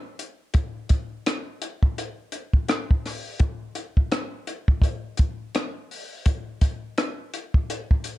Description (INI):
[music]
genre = hip hop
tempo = 84 BPM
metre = 4/4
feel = swing 59% on 16ths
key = none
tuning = none
[part]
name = compact cocktail drum kit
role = drums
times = 0.2-8.2 s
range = hi-hat, kick drum, rim click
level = -22 LUFS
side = equal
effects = vintage 12-bit sampler grit
[sound]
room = light reverb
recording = dark, warm production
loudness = -23 LUFS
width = side -16 dB against mid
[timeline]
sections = 0.0-8.2 A section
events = none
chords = none